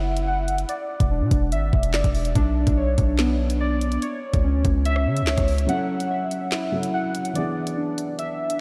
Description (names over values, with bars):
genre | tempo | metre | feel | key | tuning
hip hop, drill | 144 BPM | 4/4 | half-time | F# minor | A4 = 440 Hz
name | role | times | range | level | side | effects
warbly lo-fi synth keys | arpeggios | 0.0-8.6 s | B3 to F#5 | -28 LUFS | equal | chorus, phaser, low-pass filter, diffuse ambient delay
hard-hitting 808-style bass | bass | 0.0-5.7 s | E1 to C#3 | -25 LUFS | equal | none
drill drum kit | drums | 0.2-8.6 s | handclaps, hi-hat, kick drum, rim click, snare drum | -27 LUFS | equal | overdrive
dark concert grand piano | accompaniment | 5.7-8.6 s | E3 to A4 | -30 LUFS | equal | low-pass filter
room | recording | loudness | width
moderate cathedral reverb, RT60 5.2 s | dreamy mix soaked in reverb | -23 LUFS | mono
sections
0.0-8.6 A section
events
break 5.7-8.6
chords
0.0 F#7(no3); 0.7 E7(no3); 2.4 Bmadd9; 4.0 C#m; 5.7 F#m7; 7.4 E7